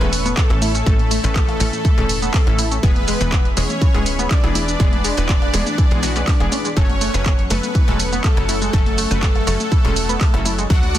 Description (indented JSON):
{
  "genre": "progressive house",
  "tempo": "122 BPM",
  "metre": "4/4",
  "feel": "straight",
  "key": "unclear",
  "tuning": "A4 = 440 Hz",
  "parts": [
    { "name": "soft supersaw", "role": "melody", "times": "0.0-11.0 s", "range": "A3 to F#5", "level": "-24 LUFS", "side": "equal", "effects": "dub echo" },
    { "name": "lush unison pad", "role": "sustained chords", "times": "0.0-11.0 s", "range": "G#4 to D6", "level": "-31 LUFS", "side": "equal", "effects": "chorus, sidechain pumping" },
    { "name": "tight sequenced synth", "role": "arpeggios", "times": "0.0-11.0 s", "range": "E3 to G#4", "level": "-27 LUFS", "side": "equal", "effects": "chorus, sidechain pumping, dub echo" },
    { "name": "wide unison pluck", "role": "stabs", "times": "0.0-10.8 s", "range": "A2 to B4", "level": "-25 LUFS", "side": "left 2 dB", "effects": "sidechain pumping, dub echo" },
    { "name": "tight sequencer bass", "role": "bass", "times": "0.0-11.0 s", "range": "D1 to D2", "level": "-22 LUFS", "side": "equal", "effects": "sidechain pumping" },
    { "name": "pop drum kit", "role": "drums", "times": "0.0-11.0 s", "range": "handclaps, hi-hat, shaker", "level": "-25 LUFS", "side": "right 2 dB", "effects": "studio ambience, sidechain pumping on hats, sidechain pumping on perc, sidechain pumping on toms, sidechain pumping on cymbals" },
    { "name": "congas and cowbell", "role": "percussion", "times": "0.3-10.9 s", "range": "none", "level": "-31 LUFS", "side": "left 3 dB", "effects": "overdrive, sidechain pumping on perc, studio ambience" },
    { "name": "electronic kick drum", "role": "drums", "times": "0.4-10.8 s", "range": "none", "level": "-16 LUFS", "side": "equal", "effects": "studio ambience" }
  ],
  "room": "little or no reverb",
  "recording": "dense, heavily limited modern master",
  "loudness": "-15 LUFS",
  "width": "side -12 dB against mid",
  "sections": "0.0-11.0 A section",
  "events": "none",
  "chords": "0.0 A; 2.8 E; 6.8 F#m"
}